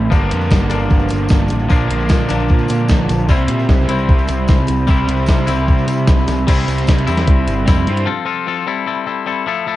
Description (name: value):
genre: indie rock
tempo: 151 BPM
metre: 4/4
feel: straight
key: unclear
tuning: A4 = 442 Hz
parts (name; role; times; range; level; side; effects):
- overdriven electric guitar; riff; 0.0-8.1 s; G2 to E4; -20 LUFS; right 4 dB; analog chorus, analog delay
- twangy electric guitar; riff; 0.0-9.8 s; F3 to A4; -21 LUFS; left 7 dB; none
- fuzz picked electric bass; bass; 0.0-8.1 s; G1 to C3; -18 LUFS; equal; overdrive
- gated 80s digital drum machine; drums; 0.1-8.1 s; crash cymbal, hi-hat, kick drum, snare drum; -14 LUFS; equal; gated reverb, gated reverb snare
- tambourine; percussion; 0.1-7.9 s; none; -40 LUFS; right 4 dB; none
room: light reverb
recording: cassette tape, nothing above 10.4 kHz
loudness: -13 LUFS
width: side -15 dB against mid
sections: 0.0-6.5 A section; 6.5-8.1 B section; 8.1-9.8 C section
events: drum fill 6.3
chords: 0.1 Gm7; 1.7 Bb; 3.3 C; 8.1 F; 8.7 Am7